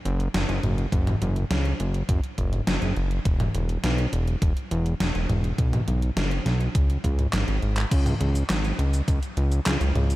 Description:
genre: synthwave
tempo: 103 BPM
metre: 4/4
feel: straight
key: unclear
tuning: A4 = 440 Hz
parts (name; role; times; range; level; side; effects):
- fat analog bass; bass; 0.1-10.2 s; E1 to C#2; -24 LUFS; equal; none
- gated 80s digital drum machine; drums; 0.1-10.2 s; cabasa, crash cymbal, handclaps, hi-hat, snare drum, toms; -28 LUFS; equal; gated reverb, gated reverb snare, overdrive
- electronic kick drum; drums; 0.9-9.2 s; none; -24 LUFS; equal; overdrive
room: light reverb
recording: none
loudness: -22 LUFS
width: side -17 dB against mid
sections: 0.0-7.9 A section; 7.9-10.2 B section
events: drum fill 7.3-7.9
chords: none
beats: 0.34 | 0.93 1.51 2.09 2.67 | 3.25 3.84 4.42 5.00 | 5.58 6.17 6.75 7.33 | 7.92 8.50 9.08 9.66

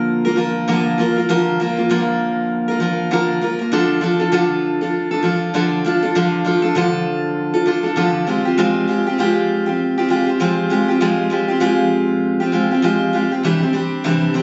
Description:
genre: pop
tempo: 99 BPM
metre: 4/4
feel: swing 60% on 16ths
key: unclear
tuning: A4 = 442 Hz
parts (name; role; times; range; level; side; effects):
- picked steel-string acoustic guitar; solo; 0.0-14.4 s; C3 to Bb4; -18 LUFS; equal; none
room: moderate studio reverb, RT60 0.6 s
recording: recorded on a phone in the room, club reverb, compression, nothing above 7.8 kHz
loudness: -18 LUFS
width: mono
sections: 0.0-13.4 A section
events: none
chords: 0.0 Bb/D; 3.7 Dm; 8.3 Fmadd9; 13.4 Cadd9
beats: 0.07 0.68 | 1.29 1.90 2.50 3.11 | 3.72 4.32 4.93 5.54 | 6.15 6.75 7.36 7.97 | 8.57 9.18 9.79 10.40 | 11.01 11.61 12.22 12.83 | 13.44 14.04

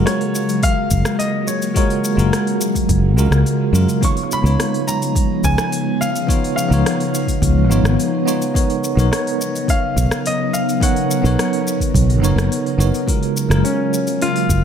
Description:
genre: sunset chillout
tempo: 106 BPM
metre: 4/4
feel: straight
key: F# major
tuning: A4 = 439 Hz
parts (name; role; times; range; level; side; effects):
- bell-like tine electric piano; accompaniment; 0.0-14.6 s; F#3 to C#5; -21 LUFS; right 1 dB; medium stereo tremolo, auto-pan, tape echo
- ethereal airy pad; sustained chords; 0.0-14.6 s; C#3 to E#5; -21 LUFS; equal; ensemble chorus, built-in reverb, phaser
- fingered electric bass; bass; 0.0-14.6 s; F#1 to F#2; -15 LUFS; equal; none
- dark baby grand piano; melody; 0.1-14.6 s; C#4 to C#6; -23 LUFS; left 1 dB; analog delay
- deep house drum kit; drums; 0.1-14.6 s; hi-hat, rim click, shaker; -26 LUFS; left 1 dB; small room ambience
- electronic kick drum; drums; 0.6-14.6 s; none; -19 LUFS; equal; small room ambience
room: light reverb, digital ambience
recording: none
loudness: -15 LUFS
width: side -8 dB against mid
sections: 0.0-13.1 A section; 13.1-14.6 A section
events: none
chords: 0.0 F#maj9; 4.0 C#9; 8.5 Bmaj9; 13.1 F#maj9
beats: 0.06 0.62 1.19 | 1.76 2.32 2.89 3.46 | 4.02 4.59 5.15 5.72 | 6.29 6.85 7.42 7.98 | 8.55 9.12 9.68 10.25 | 10.81 11.38 11.95 12.51 | 13.08 13.64 14.21

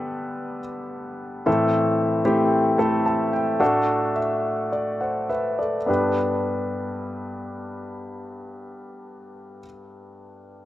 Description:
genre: pop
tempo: 51-59 BPM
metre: 4/4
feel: straight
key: G major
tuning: A4 = 440 Hz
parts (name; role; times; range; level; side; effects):
- clear concert grand piano; accompaniment; 0.0-10.7 s; G2 to A5; -22 LUFS; left 1 dB; slapback echo
room: little or no reverb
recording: recorded outdoors, with no room sound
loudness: -20 LUFS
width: side -14 dB against mid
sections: 0.0-5.9 A section; 5.9-10.6 B section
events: slowing down 0.0-5.9; grand piano fill 2.5-5.9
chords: 0.0 G; 1.5 Am; 3.6 D; 5.9 G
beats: 0.44 | 1.47 2.52 3.61 4.73 | 5.88 7.07 8.24 9.43

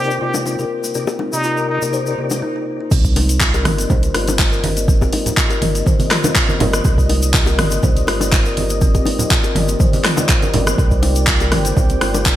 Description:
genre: afro house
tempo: 122 BPM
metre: 4/4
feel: swing 54% on 16ths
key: C minor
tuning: A4 = 440 Hz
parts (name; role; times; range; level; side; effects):
- trumpet with plunger mute; melody; 0.0-1.8 s; Eb4 to G4; -24 LUFS; right 1 dB; digital delay
- dark analog pad; sustained chords; 0.0-12.4 s; C4 to G5; -27 LUFS; equal; chorus, sidechain pumping
- kalimba; arpeggios; 0.0-12.4 s; Bb3 to C5; -23 LUFS; left 2 dB; sidechain pumping, digital delay
- mellow tonewheel organ; stabs; 0.0-2.4 s; C3 to D5; -24 LUFS; left 3 dB; chorus vibrato, fast rotary speaker, sidechain pumping, digital delay
- tube shaker; percussion; 0.1-12.4 s; none; -28 LUFS; left 4 dB; none
- bongos; percussion; 0.3-12.4 s; none; -25 LUFS; left 4 dB; none
- warm sub bass; bass; 2.9-12.4 s; G1 to C2; -20 LUFS; right 1 dB; sidechain pumping
- deep house drum kit; drums; 2.9-12.4 s; crash cymbal, handclaps, hi-hat, rim click, toms; -19 LUFS; equal; gated reverb
- electronic kick drum; drums; 2.9-12.4 s; none; -16 LUFS; right 1 dB; none
- congas; percussion; 2.9-12.2 s; none; -24 LUFS; right 3 dB; none
room: light reverb, small room reverb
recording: bright 1980s-style digital production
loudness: -14 LUFS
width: side -13 dB against mid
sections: 0.0-2.9 A section; 2.9-12.4 B section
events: break 2.4-2.9; drop 2.9-12.4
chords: 0.0 Cm7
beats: 0.46 | 0.95 1.44 1.93 2.43 | 2.92 3.41 3.90 4.39 | 4.88 5.38 5.87 6.36 | 6.85 7.34 7.84 8.33 | 8.82 9.31 9.80 10.29 | 10.79 11.28 11.77 12.26

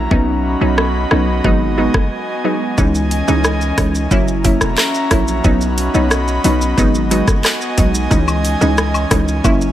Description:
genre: dancehall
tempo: 90 BPM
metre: 4/4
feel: straight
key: unclear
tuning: A4 = 440 Hz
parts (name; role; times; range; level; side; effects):
- airy breathy pad; sustained chords; 0.0-9.7 s; E3 to B5; -21 LUFS; equal; chorus, sidechain pumping
- hard-hitting 808-style bass; bass; 0.0-9.7 s; E1 to C#2; -18 LUFS; equal; none
- glassy wavetable pluck; accompaniment; 0.1-9.7 s; E3 to E4; -17 LUFS; equal; chorus
- island pop drum kit; drums; 0.1-9.7 s; handclaps, hi-hat, kick drum, rim click, shaker; -17 LUFS; equal; none
- woodblock and cabasa; percussion; 8.3-9.6 s; none; -24 LUFS; left 6 dB; none
room: light reverb, digital ambience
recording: none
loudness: -13 LUFS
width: side -12 dB against mid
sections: 0.0-2.8 A section; 2.8-9.7 B section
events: break 2.1-2.8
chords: 0.1 Badd9; 1.4 G#m7; 2.8 C#madd9; 4.1 F#7; 5.4 Badd9; 6.8 G#m7; 8.1 C#madd9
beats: | 0.11 0.78 1.45 2.11 | 2.78 3.44 4.11 4.78 | 5.45 6.11 6.78 7.45 | 8.11 8.78 9.45

